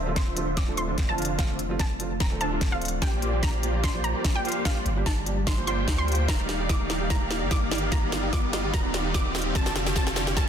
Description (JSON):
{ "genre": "future bass", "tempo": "147 BPM", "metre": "4/4", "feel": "swing 54% on 16ths, half-time", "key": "D minor", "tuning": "A4 = 440 Hz", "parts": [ { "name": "wide unison pluck", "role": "melody", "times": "0.0-10.5 s", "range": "F5 to D6", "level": "-33 LUFS", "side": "equal", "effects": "sidechain pumping, ping-pong delay" }, { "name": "ethereal airy pad", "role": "sustained chords", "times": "0.0-10.5 s", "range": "C3 to D5", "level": "-38 LUFS", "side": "equal", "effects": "ensemble chorus, built-in reverb, sidechain pumping" }, { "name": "supersaw chords", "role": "riff", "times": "0.0-10.5 s", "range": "D3 to G5", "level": "-31 LUFS", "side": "right 1 dB", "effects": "lush chorus, sidechain pumping, low-pass filter" }, { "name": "long sustained 808-style bass", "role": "bass", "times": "0.0-10.5 s", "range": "D1 to D2", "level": "-30 LUFS", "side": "equal", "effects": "sidechain pumping" }, { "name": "riser", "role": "sound effects", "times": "3.6-10.5 s", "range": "none", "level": "-37 LUFS", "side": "left 1 dB", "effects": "none" }, { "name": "warm baby grand piano", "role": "accompaniment", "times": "0.1-6.3 s", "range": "D3 to C5", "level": "-35 LUFS", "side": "right 4 dB", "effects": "sidechain pumping, dub echo" }, { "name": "electronic kick drum", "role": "drums", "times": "0.2-10.5 s", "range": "none", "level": "-26 LUFS", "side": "equal", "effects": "overdrive, studio reverb" }, { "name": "trap drum kit", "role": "drums", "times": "0.2-10.5 s", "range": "hi-hat, snare drum", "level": "-31 LUFS", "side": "equal", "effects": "studio reverb" }, { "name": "soft round pluck", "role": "arpeggios", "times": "6.3-10.4 s", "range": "D4 to Eb5", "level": "-39 LUFS", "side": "right 4 dB", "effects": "none" } ], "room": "light reverb", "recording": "dense, heavily limited modern master", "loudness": "-23 LUFS", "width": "side -8 dB against mid", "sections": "0.0-10.5 A section", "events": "build-up 0.0-10.5; drum fill 0.0-10.5; filter sweep on supersaw synth 0.0-10.5; riser 3.6-10.5", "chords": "0.0 Dm7; 3.0 Bb6; 6.3 Ebmaj7; 9.6 F" }